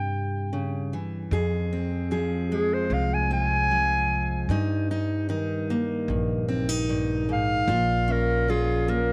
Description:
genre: acoustic folk duo or small band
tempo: 75 BPM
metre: 4/4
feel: straight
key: F minor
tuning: A4 = 445 Hz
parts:
  - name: clear clarinet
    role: melody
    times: 0.0-9.1 s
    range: Ab4 to Ab5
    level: -28 LUFS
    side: equal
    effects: slapback echo
  - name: fingerpicked steel-string acoustic guitar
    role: accompaniment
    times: 0.0-9.1 s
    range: F2 to Ab4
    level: -29 LUFS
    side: equal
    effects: none
  - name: upright bass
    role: bass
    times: 0.0-9.1 s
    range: Bb1 to G2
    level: -30 LUFS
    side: equal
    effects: none
room: light reverb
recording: none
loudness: -26 LUFS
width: mono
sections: 0.0-1.3 A section; 1.3-9.1 B section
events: clarinet solo 1.3-9.1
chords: 0.0 C; 1.3 Fm; 4.5 Eb/G; 7.7 Bbm

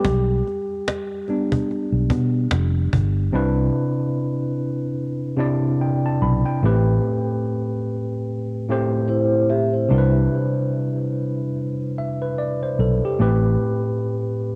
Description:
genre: lo-fi hip hop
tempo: 73 BPM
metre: 4/4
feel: swing 57% on 16ths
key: C major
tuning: A4 = 442 Hz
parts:
  - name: tine electric piano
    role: accompaniment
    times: 0.0-14.6 s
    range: A2 to B5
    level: -24 LUFS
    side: equal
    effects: overdrive, cassette tape, low-pass filter
  - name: vintage muted fingered electric bass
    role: bass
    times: 0.0-13.6 s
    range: F1 to B2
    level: -21 LUFS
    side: equal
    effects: none
  - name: cajon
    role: drums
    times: 0.0-3.1 s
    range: none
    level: -27 LUFS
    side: equal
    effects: cassette tape
  - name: vibraphone with soft mallets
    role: second line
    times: 9.1-10.1 s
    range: E4 to E5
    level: -26 LUFS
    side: equal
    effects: low-pass filter, tape echo
room: light reverb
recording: home recording on cassette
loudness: -22 LUFS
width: mono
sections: 0.0-3.3 A section; 3.3-14.6 B section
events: tine electric piano solo 0.0-3.3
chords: 0.0 G; 3.3 Cmaj9; 6.6 Am7; 9.9 Cmaj9; 13.2 Am7

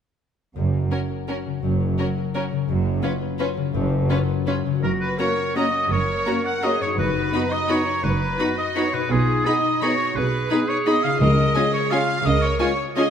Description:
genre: classical, orchestral ballroom waltz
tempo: 169 BPM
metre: 3/4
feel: uneven beats, rubato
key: F# major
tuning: A4 = 441 Hz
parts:
  - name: concert harp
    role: arpeggios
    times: 0.6-13.1 s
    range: F#2 to B4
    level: -28 LUFS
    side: left 9 dB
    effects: none
  - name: clear studio double bass section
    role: bass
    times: 0.6-12.5 s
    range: F#1 to C#2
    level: -26 LUFS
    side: right 3 dB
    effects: none
  - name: rich studio cello section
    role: bass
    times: 0.6-12.5 s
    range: F#2 to C#3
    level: -27 LUFS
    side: right 4 dB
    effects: none
  - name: rich studio violin section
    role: melody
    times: 0.9-13.0 s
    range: A#4 to B5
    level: -34 LUFS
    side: left 4 dB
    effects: none
  - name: rich studio violin section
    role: second line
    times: 0.9-13.1 s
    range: E#4 to F#5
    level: -29 LUFS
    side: left 1 dB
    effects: none
  - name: clear studio viola section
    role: accompaniment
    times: 0.9-13.0 s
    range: C#4 to G#4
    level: -27 LUFS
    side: right 1 dB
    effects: none
  - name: clear clarinet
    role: second line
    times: 4.8-13.1 s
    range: D#4 to A#4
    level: -28 LUFS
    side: right 1 dB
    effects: none
  - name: clear oboe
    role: second line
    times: 4.8-13.1 s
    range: G#4 to F#5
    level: -24 LUFS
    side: right 1 dB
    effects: none
  - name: mellow French horn section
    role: sustained chords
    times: 5.2-13.1 s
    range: G#3 to E#4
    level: -28 LUFS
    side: left 2 dB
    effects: none
  - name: timpani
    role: percussion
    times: 7.0-7.5, 11.2-11.7 s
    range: F#2 to C#3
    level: -26 LUFS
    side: left 2 dB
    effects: none
room: moderate scoring stage reverb, RT60 1.8 s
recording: none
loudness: -19 LUFS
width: side -8 dB against mid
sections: 0.6-4.8 A section; 4.8-13.1 B section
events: none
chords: 0.6 F#; 2.7 C#7/F#; 4.8 F#; 7.0 B/F#; 9.1 G#m/B; 11.2 C#

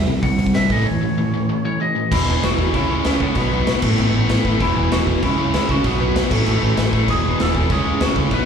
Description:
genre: punk rock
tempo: 193 BPM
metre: 4/4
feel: straight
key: E major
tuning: A4 = 440 Hz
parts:
  - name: lightly driven lead guitar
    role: melody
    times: 0.0-8.5 s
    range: B3 to F#5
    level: -24 LUFS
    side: right 1 dB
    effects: tape echo
  - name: biting overdriven guitar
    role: riff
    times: 0.0-8.5 s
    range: E2 to C#4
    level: -22 LUFS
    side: left 10 dB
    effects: none
  - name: sludgy distorted guitar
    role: riff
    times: 0.0-8.5 s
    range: E2 to C#4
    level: -23 LUFS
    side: right 12 dB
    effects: overdrive
  - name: growling picked electric bass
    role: bass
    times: 0.0-8.4 s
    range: E1 to G2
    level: -22 LUFS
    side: equal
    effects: overdrive
  - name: raw garage drum kit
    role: drums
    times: 0.1-8.4 s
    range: crash cymbal, hi-hat, kick drum, snare drum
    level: -22 LUFS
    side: equal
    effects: none
room: small room ambience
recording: live gig heard through the venue's PA, club reverb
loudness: -16 LUFS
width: side -7 dB against mid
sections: 0.0-2.1 A section; 2.1-8.5 B section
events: break 0.9-2.1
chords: 0.0 C; 0.7 A; 2.1 E5; 2.7 C#m; 3.4 B5; 3.8 A5; 4.6 E5; 5.2 C#m; 5.8 B5; 6.3 A5; 7.1 E; 7.7 C#5

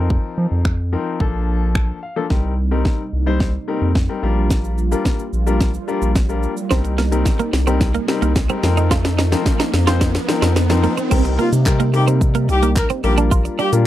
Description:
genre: dance-pop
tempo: 109 BPM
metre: 4/4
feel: straight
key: C minor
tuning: A4 = 438 Hz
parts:
  - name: clear baby grand piano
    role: accompaniment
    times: 0.0-13.9 s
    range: F3 to A5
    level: -23 LUFS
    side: left 5 dB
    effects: sidechain pumping
  - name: round analog bass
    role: bass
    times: 0.0-13.9 s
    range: Bb1 to F3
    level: -18 LUFS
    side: equal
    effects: sidechain pumping
  - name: house drum kit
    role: drums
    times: 0.1-13.9 s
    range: crash cymbal, finger snaps, handclaps, hi-hat, kick drum, shaker, snare drum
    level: -19 LUFS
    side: equal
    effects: none
  - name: warm analog pad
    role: sustained chords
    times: 2.3-13.9 s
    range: C3 to Bb4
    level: -26 LUFS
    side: equal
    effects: chorus, sidechain pumping
  - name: riser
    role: sound effects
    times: 4.8-11.1 s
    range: none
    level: -29 LUFS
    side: right 2 dB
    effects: none
  - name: twelve-string electric guitar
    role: riff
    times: 6.7-13.7 s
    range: Bb3 to F4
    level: -22 LUFS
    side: right 7 dB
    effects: wide subtle chorus
  - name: warm horn section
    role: melody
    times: 11.4-13.7 s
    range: F4 to Bb4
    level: -20 LUFS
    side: left 1 dB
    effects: sidechain pumping, tape echo
room: little or no reverb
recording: dry, close 1970s-style studio recording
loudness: -15 LUFS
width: side -13 dB against mid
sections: 0.0-2.3 A section; 2.3-11.1 B section; 11.1-13.9 C section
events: grand piano fill 1.5-2.3; build-up 2.3-11.1; drum fill 2.3-11.1; riser 4.8-11.1; drop 11.1-13.9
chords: 0.0 F7sus4; 1.2 Bbmaj7; 2.3 Cm7; 4.2 Gm7/Bb; 6.7 Cm7; 8.6 F7sus4; 11.1 Cm7; 13.0 Gm7/Bb

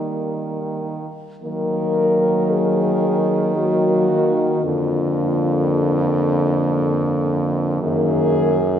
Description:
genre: classical, lyrical piece for horn quartet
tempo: 56 BPM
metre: 3/4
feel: rubato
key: Eb minor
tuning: A4 = 440 Hz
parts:
  - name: dark French horn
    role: melody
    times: 0.0-8.8 s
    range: Eb4 to Bb4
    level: -22 LUFS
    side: left 3 dB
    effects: none
  - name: dark French horn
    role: second line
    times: 0.0-8.6 s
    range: Bb3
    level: -24 LUFS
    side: right 4 dB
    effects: none
  - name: dark French horn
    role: accompaniment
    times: 0.0-8.6 s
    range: D3 to G3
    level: -22 LUFS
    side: left 1 dB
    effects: none
  - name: clear French horn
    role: bass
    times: 0.0-8.8 s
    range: F2 to Eb3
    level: -23 LUFS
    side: right 1 dB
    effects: none
room: wet concert hall reverb, RT60 2.2 s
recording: recorded in a church or concert hall, lossy compression artefacts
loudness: -17 LUFS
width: side -9 dB against mid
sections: 0.0-1.4 A section; 1.4-8.8 B section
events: none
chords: 0.0 Eb; 1.4 Ebm; 4.6 Bb/F; 7.8 Ebm/Gb

